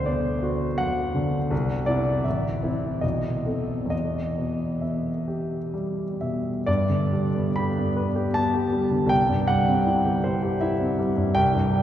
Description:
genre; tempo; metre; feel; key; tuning
classical, romantic character piece for solo piano; 62-84 BPM; 3/4; rubato; E minor, G major from 6.7 s; A4 = 436 Hz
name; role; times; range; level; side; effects
warm baby grand piano; solo; 0.0-11.8 s; A1 to B5; -22 LUFS; equal; none
room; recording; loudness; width
wet cathedral reverb, RT60 5.9 s; heard from further back in the room; -22 LUFS; side -11 dB against mid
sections
0.0-6.7 A section; 6.7-11.8 B section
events
none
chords
0.0 Bm/D; 1.5 Cadd9; 2.2 Am; 3.0 B7b9; 3.9 Em; 6.7 G; 9.1 C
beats
0.07 0.80 | 1.52 2.25 3.03 | 3.92 4.82 5.74 | 6.67 7.58 8.35 | 9.11 9.87 10.61 | 11.36

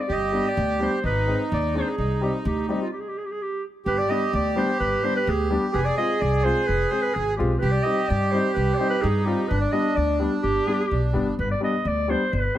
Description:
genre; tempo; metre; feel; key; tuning
klezmer; 128 BPM; 2/4; straight; G phrygian dominant; A4 = 440 Hz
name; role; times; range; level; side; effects
warm clarinet; melody; 0.0-12.6 s; F4 to Eb5; -26 LUFS; equal; none
accordion; second line; 0.1-11.3 s; D4 to Ab4; -26 LUFS; right 4 dB; none
upright bass; bass; 0.1-12.5 s; F1 to G2; -26 LUFS; equal; none
warm upright piano; accompaniment; 0.3-12.6 s; G3 to Ab4; -28 LUFS; left 3 dB; none
room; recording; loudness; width
light reverb; close, detailed microphones; -21 LUFS; side -12 dB against mid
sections
0.0-3.9 A section; 3.9-11.4 B section; 11.4-12.6 B section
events
stop 2.9-3.9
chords
0.1 G; 1.0 Ab; 2.0 Cm; 2.9 N.C.; 3.9 G; 5.7 Fm; 7.6 Cm; 9.5 G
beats
| 0.09 0.57 | 1.04 1.51 | 1.98 2.45 | 2.92 3.39 | 3.86 4.33 | 4.80 5.27 | 5.74 6.21 | 6.68 7.15 | 7.62 8.09 | 8.56 9.03 | 9.50 9.97 | 10.44 10.91 | 11.38 11.85 | 12.32

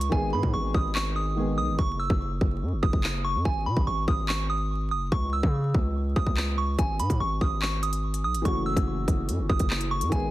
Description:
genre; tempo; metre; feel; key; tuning
hip hop, drill; 144 BPM; 4/4; half-time; G# phrygian; A4 = 440 Hz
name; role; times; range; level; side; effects
delicate synth tine bell; melody; 0.0-10.3 s; G#5 to E6; -30 LUFS; right 1 dB; chorus, ping-pong delay
distorted 808-style bass; bass; 0.0-10.3 s; F#1 to C#3; -28 LUFS; equal; distortion
drill drum kit; drums; 0.0-10.2 s; handclaps, hi-hat, kick drum; -27 LUFS; equal; none
dark baby grand piano; accompaniment; 0.1-1.8, 8.4-10.3 s; D#3 to G#4; -31 LUFS; left 1 dB; none
room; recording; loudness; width
little or no reverb; dense, heavily limited modern master, vinyl crackle; -24 LUFS; side -16 dB against mid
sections
0.0-10.3 A section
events
hi-hats muted 0.1-6.8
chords
0.1 G#m; 1.8 C#madd11/F#; 3.5 G#5; 5.1 C#m; 6.8 G#5; 8.5 F#m7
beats
| 0.12 0.54 0.95 1.37 | 1.79 2.20 2.62 3.04 | 3.45 3.87 4.29 4.70 | 5.12 5.54 5.95 6.37 | 6.79 7.20 7.62 8.04 | 8.45 8.87 9.29 9.70 | 10.12

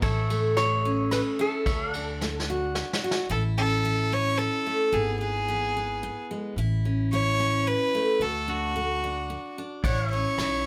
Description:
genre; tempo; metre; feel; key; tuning
honky-tonk and classic country; 110 BPM; 3/4; straight; A major; A4 = 438 Hz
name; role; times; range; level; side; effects
lap resonator guitar; second line; 0.0-2.4 s; A4 to C#5; -32 LUFS; equal; none
picked steel-string acoustic guitar; accompaniment; 0.0-10.7 s; E2 to F#4; -32 LUFS; equal; none
pedal steel guitar; sustained chords; 0.0-3.3, 9.8-10.7 s; C#5 to F#5; -38 LUFS; equal; none
upright bass; bass; 0.0-10.7 s; G#1 to D2; -32 LUFS; equal; none
vintage brush drum kit; drums; 0.0-3.2, 9.8-10.5 s; kick drum, ride cymbal, rim click, snare drum; -33 LUFS; equal; none
clear fiddle; melody; 3.3-10.7 s; F#4 to C#5; -29 LUFS; equal; none
room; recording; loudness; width
moderate studio reverb, RT60 0.8 s; none; -26 LUFS; mono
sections
0.0-3.3 A section; 3.3-10.7 B section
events
resonator guitar played with a steel bar solo 0.0-3.3; drum fill 2.2-3.3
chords
0.0 A; 1.7 D; 3.3 A; 4.9 E/G#; 6.6 A; 8.2 D; 9.8 A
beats
| 0.02 0.57 1.11 | 1.66 2.21 2.75 | 3.29 3.84 4.39 | 4.93 5.48 6.02 | 6.57 7.11 7.66 | 8.21 8.75 9.30 | 9.84 10.39

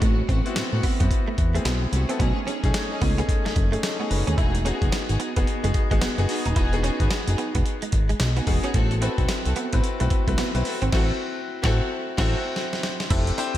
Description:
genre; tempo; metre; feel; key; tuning
R&B, new jack swing; 110 BPM; 4/4; swing 61% on 16ths; unclear; A4 = 441 Hz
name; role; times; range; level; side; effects
clear concert grand piano; accompaniment; 0.0-13.6 s; A3 to D#5; -29 LUFS; left 3 dB; slapback echo
direct-recorded clean electric guitar; riff; 0.0-13.5 s; G#3 to E4; -32 LUFS; right 4 dB; ensemble chorus, slapback echo
warm studio string section; stabs; 0.0-12.4 s; A3 to A4; -31 LUFS; right 1 dB; digital delay, slapback echo
fat analog bass; bass; 0.0-13.6 s; D#1 to A2; -23 LUFS; equal; none
dusty soul sampler-style drum kit; drums; 0.0-13.6 s; crash cymbal, handclaps, hi-hat, kick drum, snare drum, tambourine; -24 LUFS; equal; none
room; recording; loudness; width
light reverb; none; -21 LUFS; side -13 dB against mid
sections
0.0-4.4 A section; 4.4-13.1 B section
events
grand piano fill 7.9-8.7; band accent 10.9-13.1; drum fill 12.6-13.1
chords
0.0 Am6; 2.2 B13; 4.4 Emaj9; 8.7 Am6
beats
| 0.02 0.56 1.11 1.65 | 2.20 2.74 3.29 3.83 | 4.38 4.92 5.47 6.02 | 6.56 7.11 7.65 8.20 | 8.74 9.29 9.83 10.38 | 10.93 11.47 12.02 12.56 | 13.11

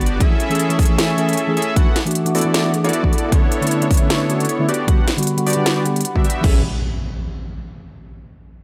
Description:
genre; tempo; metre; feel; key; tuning
future bass; 154 BPM; 4/4; swing 55% on 16ths, half-time; A major; A4 = 441 Hz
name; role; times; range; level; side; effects
airy breathy pad; sustained chords; 0.0-6.6 s; G3 to D6; -31 LUFS; equal; chorus, sidechain pumping
big bright polysynth; riff; 0.0-6.6 s; B3 to F#5; -24 LUFS; equal; chorus, sidechain pumping, tape echo
detuned saw bass; bass; 0.0-0.2, 6.4-6.6 s; G1 to A1; -25 LUFS; equal; none
trap drum kit; drums; 0.0-6.5 s; crash cymbal, hi-hat, snare drum; -26 LUFS; equal; none
mellow tine electric piano; accompaniment; 0.2-6.6 s; D3 to A4; -23 LUFS; equal; sidechain pumping, tape echo
electronic kick drum; drums; 0.2-6.5 s; none; -18 LUFS; equal; none
impact; sound effects; 6.6-8.0 s; none; -28 LUFS; equal; none
room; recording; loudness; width
light reverb; none; -18 LUFS; mono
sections
0.0-6.4 A section; 6.4-8.0 B section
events
filter sweep on analog synth pad 0.0-6.4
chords
0.2 Amaj7; 1.8 E9sus4; 3.3 Bm11; 4.7 Gmaj7; 6.4 Amaj7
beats
| 0.20 0.59 0.98 1.37 | 1.76 2.15 2.54 2.93 | 3.32 3.71 4.10 4.49 | 4.88 5.27 5.66 6.05 | 6.44 6.83 7.22 7.61

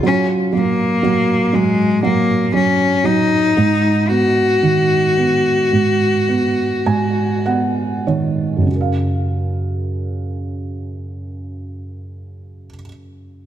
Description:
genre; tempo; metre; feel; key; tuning
pop; 48-61 BPM; 4/4; straight; F# major; A4 = 441 Hz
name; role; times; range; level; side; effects
felt-muted upright piano; accompaniment; 0.0-13.5 s; F#2 to G#5; -18 LUFS; right 3 dB; none
picked steel-string acoustic guitar; arpeggios; 0.0-0.6 s; C#3 to E#4; -27 LUFS; left 6 dB; digital delay
clear cello; melody; 0.1-7.5 s; G#3 to F#4; -16 LUFS; left 3 dB; none
room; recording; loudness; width
light reverb, small room ambience; none; -14 LUFS; side -10 dB against mid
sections
0.0-8.7 A section; 8.7-13.5 B section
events
slowing down 0.0-8.7; felt piano fill 6.3-8.7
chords
0.0 N.C.; 3.6 G#m7; 8.7 F#maj7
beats
| 0.04 1.03 2.03 3.05 | 4.09 5.17 6.29 7.46 | 8.69 9.95 11.22 12.48

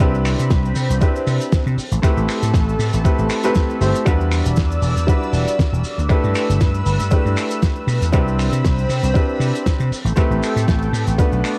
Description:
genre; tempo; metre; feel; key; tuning
nu-disco, nu disco; 118 BPM; 4/4; swing 56% on 16ths; unclear; A4 = 436 Hz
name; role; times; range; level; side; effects
bright baby grand piano; accompaniment; 0.0-11.6 s; G3 to C5; -25 LUFS; equal; sidechain pumping, cassette tape
lush unison pad; sustained chords; 0.0-11.6 s; C4 to E6; -30 LUFS; equal; chorus, phaser, sidechain pumping, cassette tape
vintage slap bass; bass; 0.0-11.4 s; E1 to C3; -21 LUFS; equal; none
damped 70s drum kit; drums; 0.0-11.6 s; finger snaps, hi-hat, shaker, snare drum; -28 LUFS; equal; cassette tape
electronic kick drum; drums; 0.0-11.3 s; none; -19 LUFS; equal; cassette tape
cabasa; percussion; 0.1-11.4 s; none; -43 LUFS; equal; none
room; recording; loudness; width
light reverb, studio reverb; home recording on cassette; -18 LUFS; mono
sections
0.0-11.6 A section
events
none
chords
0.0 Cmaj7; 1.8 Am7; 4.1 Em7; 6.1 G6; 8.1 Cmaj7; 9.9 Am7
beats
| 0.00 0.51 1.01 1.52 | 2.03 2.54 3.05 3.56 | 4.07 4.57 5.08 5.59 | 6.10 6.61 7.12 7.62 | 8.13 8.64 9.15 9.66 | 10.17 10.68 11.18

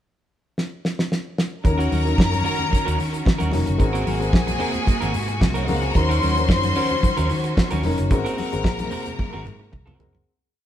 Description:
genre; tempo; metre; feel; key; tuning
disco; 111 BPM; 4/4; straight; Eb dorian; A4 = 440 Hz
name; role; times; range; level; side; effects
damped 70s drum kit; drums; 0.6-10.3 s; hi-hat, kick drum, snare drum, toms; -21 LUFS; equal; none
clear studio string section; second line; 1.6-10.0 s; Db4 to C6; -27 LUFS; left 2 dB; none
dark grand piano; accompaniment; 1.6-10.3 s; F3 to Bb4; -28 LUFS; left 3 dB; none
electric guitar at the edge of break-up; accompaniment; 1.6-10.2 s; C4 to Bb4; -30 LUFS; right 3 dB; none
clear studio string section; sustained chords; 1.6-10.2 s; C3 to Gb4; -30 LUFS; equal; none
fingered electric bass; bass; 1.7-10.2 s; F1 to Eb3; -24 LUFS; equal; none
congas; percussion; 1.7-10.1 s; none; -32 LUFS; left 3 dB; none
room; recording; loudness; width
moderate stone room reverb, RT60 1.4 s; band playing live in one room; -19 LUFS; side -11 dB against mid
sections
0.0-1.6 pickup bar; 1.6-10.3 groove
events
drum fill 0.6-1.6, 9.2-10.3; fade-out 8.1-10.3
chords
0.0 N.C.; 1.6 Ebm7; 3.8 Ab9; 6.0 Ebm7; 8.1 Ab9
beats
0.03 0.57 1.11 | 1.64 2.18 2.72 3.26 | 3.79 4.33 4.87 5.41 | 5.95 6.49 7.03 7.57 | 8.11 8.65 9.19 9.73

